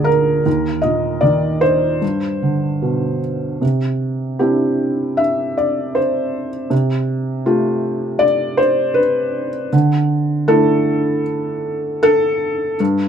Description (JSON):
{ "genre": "classical, lyrical solo piano", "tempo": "78 BPM", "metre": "4/4", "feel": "rubato", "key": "C major from 3.6 s", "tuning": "A4 = 443 Hz", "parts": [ { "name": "felt-muted upright piano", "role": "solo", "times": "0.0-13.1 s", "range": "D2 to E5", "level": "-15 LUFS", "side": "equal", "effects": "none" } ], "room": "little or no reverb", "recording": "close, detailed microphones", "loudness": "-15 LUFS", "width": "side -8 dB against mid", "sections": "0.0-3.6 A section; 3.6-13.1 B section", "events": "none", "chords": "0.5 Eb5; 2.0 G; 3.6 Cadd9; 6.7 Fadd9/C; 9.7 Dsus2" }